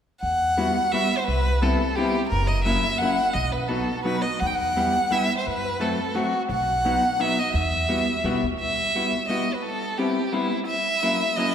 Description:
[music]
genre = musette waltz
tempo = 173 BPM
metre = 3/4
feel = rubato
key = E harmonic minor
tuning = A4 = 441 Hz
[part]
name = rich violin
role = melody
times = 0.2-11.5 s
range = E4 to G5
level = -24 LUFS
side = right 1 dB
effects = none
[part]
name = upright bass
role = bass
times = 0.2-8.6 s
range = F#1 to F#2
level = -28 LUFS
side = equal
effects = none
[part]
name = vintage hollow-body jazz guitar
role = accompaniment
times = 0.6-11.5 s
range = F#3 to G4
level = -26 LUFS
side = left 2 dB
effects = none
[sound]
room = wet concert hall reverb, RT60 2.4 s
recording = recorded in a church or concert hall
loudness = -21 LUFS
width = side -8 dB against mid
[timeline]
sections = 0.2-8.6 A section; 8.6-11.5 A section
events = none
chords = 0.2 Emadd9; 1.3 Cmaj7; 2.3 F#7; 3.4 B; 4.4 Em; 5.5 F#dim; 6.5 B; 7.5 Emadd9; 9.6 Cmaj7; 10.7 F#7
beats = | 0.22 0.58 0.93 | 1.28 1.63 1.97 | 2.32 2.67 3.01 | 3.36 3.70 4.06 | 4.41 4.77 5.12 | 5.47 5.81 6.16 | 6.50 6.85 7.19 | 7.54 7.89 8.25 | 8.61 8.96 9.30 | 9.65 9.99 10.34 | 10.68 11.03 11.38

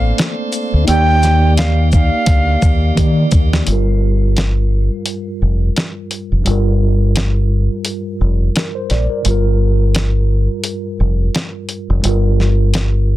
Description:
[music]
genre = hip hop, boom-bap hip-hop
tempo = 86 BPM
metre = 4/4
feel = swing 58% on 16ths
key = G minor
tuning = A4 = 439 Hz
[part]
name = jazz flute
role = melody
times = 0.0-2.9 s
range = F5 to G5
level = -20 LUFS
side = right 2 dB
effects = high-pass filter, low-pass filter, tape echo
[part]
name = mellow tine electric piano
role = accompaniment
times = 0.0-13.2 s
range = G2 to D5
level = -21 LUFS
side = right 1 dB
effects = medium stereo tremolo, cassette tape, high-pass filter, low-pass filter
[part]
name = tonewheel organ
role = sustained chords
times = 0.0-3.6 s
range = Bb3 to D5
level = -24 LUFS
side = right 1 dB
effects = overdrive, stopped rotary speaker, high-pass filter, low-pass filter
[part]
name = deep dub fingered electric bass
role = bass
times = 0.0-13.2 s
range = F1 to Eb3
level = -14 LUFS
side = equal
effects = none
[part]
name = dusty soul sampler-style drum kit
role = drums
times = 0.2-12.9 s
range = hi-hat, kick drum, shaker, snare drum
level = -16 LUFS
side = equal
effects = none
[sound]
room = little or no reverb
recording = dense, heavily limited modern master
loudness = -12 LUFS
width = side -15 dB against mid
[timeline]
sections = 0.0-3.7 A section; 3.7-13.2 B section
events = drum fill 3.0-3.7; break 3.7-13.2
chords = 0.0 Bbmaj9; 0.9 Ebmaj7; 3.7 Gm7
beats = 0.18 | 0.88 1.58 2.27 2.97 | 3.67 4.37 5.07 5.76 | 6.46 7.16 7.86 8.55 | 9.25 9.95 10.65 11.35 | 12.04 12.74

